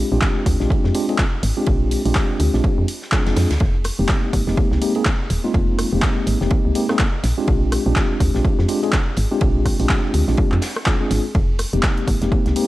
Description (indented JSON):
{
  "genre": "deep house",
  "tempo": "124 BPM",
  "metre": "4/4",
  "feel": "swing 58% on 16ths",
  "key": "unclear",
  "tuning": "A4 = 443 Hz",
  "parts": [
    { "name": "mellow tine electric piano", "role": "stabs", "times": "0.0-12.7 s", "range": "Ab3 to Ab4", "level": "-22 LUFS", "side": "equal", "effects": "medium stereo tremolo, sidechain pumping, low-pass filter, tape echo" },
    { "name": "woody FM bass", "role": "bass", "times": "0.0-12.5 s", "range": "Eb1 to F2", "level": "-20 LUFS", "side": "equal", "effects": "sidechain pumping" },
    { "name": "electronic kick drum", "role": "drums", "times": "0.2-12.4 s", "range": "none", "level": "-19 LUFS", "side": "equal", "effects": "overdrive" },
    { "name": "gated 80s drum kit", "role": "drums", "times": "0.2-12.7 s", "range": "ride cymbal, snare drum", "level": "-35 LUFS", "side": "equal", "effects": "sidechain pumping on cymbals, high-pass filter on cymbals, high-pass filter on snare, high-pass filter on room" },
    { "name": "punchy analog drum machine", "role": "drums", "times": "0.2-12.7 s", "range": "handclaps, hi-hat, rim click", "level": "-26 LUFS", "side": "equal", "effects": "overdrive" }
  ],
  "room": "small room ambience",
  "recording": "cassette tape",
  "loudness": "-16 LUFS",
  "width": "side -17 dB against mid",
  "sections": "0.0-12.7 A section",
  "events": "none",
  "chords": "0.0 Bb13; 3.6 Fm11; 7.2 Bb13; 11.3 Fm11"
}